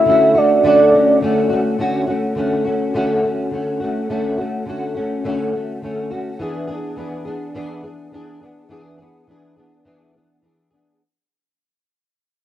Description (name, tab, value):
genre	indie pop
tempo	104 BPM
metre	4/4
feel	swing 60% on 16ths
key	D lydian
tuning	A4 = 439 Hz
part	soft octave-layered synth lead	melody	0.0-1.2 s	D5 to E5	-13 LUFS	right 1 dB	tremolo, wide subtle chorus, cassette tape, tape echo
part	fingerpicked plugged-in steel-string acoustic guitar	accompaniment	0.0-11.0 s	D3 to G#4	-19 LUFS	left 1 dB	ensemble chorus, vibrato effect, plate reverb
room	moderate small room ambience, RT60 0.5 s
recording	home recording on cassette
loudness	-16 LUFS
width	side -12 dB against mid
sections	0.0-1.8 A section; 1.8-11.0 B section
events	fade-out 1.8-11.0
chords	0.0 Dmaj7; 6.4 E7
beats	0.07 0.64 1.22 | 1.79 2.37 2.94 3.52 | 4.09 4.67 5.24 5.82 | 6.39 6.97 7.54 8.12 | 8.70 9.27 9.85 10.43